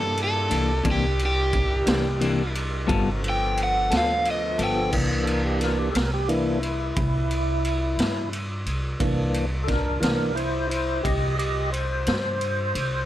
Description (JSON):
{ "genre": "slow blues", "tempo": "59 BPM (dotted quarters)", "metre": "12/8", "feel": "straight", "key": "C mixolydian", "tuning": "A4 = 442 Hz", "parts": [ { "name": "overdriven semi-hollow guitar", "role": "melody", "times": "0.0-4.9 s", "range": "G4 to G5", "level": "-24 LUFS", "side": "equal", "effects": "plate reverb" }, { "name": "clean electric guitar", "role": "accompaniment", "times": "0.0-4.8 s", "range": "C3 to A4", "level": "-26 LUFS", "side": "left 4 dB", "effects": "harmonic tremolo" }, { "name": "tonewheel organ", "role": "sustained chords", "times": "0.0-13.1 s", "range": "D3 to Eb5", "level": "-27 LUFS", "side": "equal", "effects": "overdrive, chorus vibrato, slow rotary speaker, plate reverb" }, { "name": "upright bass", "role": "bass", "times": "0.0-13.1 s", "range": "G1 to G2", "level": "-27 LUFS", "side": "equal", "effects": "none" }, { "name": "raw garage drum kit", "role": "drums", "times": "0.2-12.9 s", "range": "crash cymbal, kick drum, ride cymbal, snare drum", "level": "-28 LUFS", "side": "equal", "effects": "none" } ], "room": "light reverb", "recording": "dark, warm production", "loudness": "-22 LUFS", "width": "side -13 dB against mid", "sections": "0.0-4.9 A section; 4.9-13.1 A section", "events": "overdriven electric guitar solo 0.0-4.9; tonewheel organ solo 4.9-13.1", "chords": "0.0 C9; 2.9 G9; 4.9 C9", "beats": "| 0.85 1.87 2.89 3.91 | 4.93 5.95 6.97 7.99 | 9.01 10.03 11.05 12.07" }